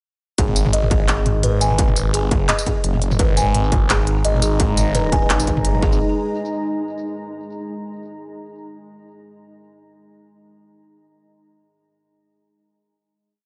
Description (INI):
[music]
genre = half-time drum and bass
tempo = 171 BPM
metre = 4/4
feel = swing 56% on 16ths, half-time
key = G# minor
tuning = A4 = 438 Hz
[part]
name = buzzing kalimba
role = arpeggios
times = 0.4-6.0 s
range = G#4 to G#5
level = -27 LUFS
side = equal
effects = dub echo
[part]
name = phased detuned saw bass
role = bass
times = 0.4-6.0 s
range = F#1 to G#1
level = -22 LUFS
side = equal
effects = phaser, tube saturation
[part]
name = electronic kick drum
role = drums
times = 0.4-5.9 s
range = none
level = -23 LUFS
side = equal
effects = distortion
[part]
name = industrial drum kit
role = drums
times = 0.4-5.8 s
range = handclaps, hi-hat, tambourine, toms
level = -24 LUFS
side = equal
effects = tape echo
[part]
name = deep dark ambient pad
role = sustained chords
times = 4.0-6.0 s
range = G#3 to A#5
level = -28 LUFS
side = equal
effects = chorus, built-in reverb, sidechain pumping
[sound]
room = light reverb, digital ambience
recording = echo-heavy mix, nothing above 10.9 kHz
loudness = -19 LUFS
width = mono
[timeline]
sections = 0.4-6.0 drop; 6.0-7.4 final hit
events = drop 0.4-6.0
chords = 0.4 G#5; 6.0 N.C.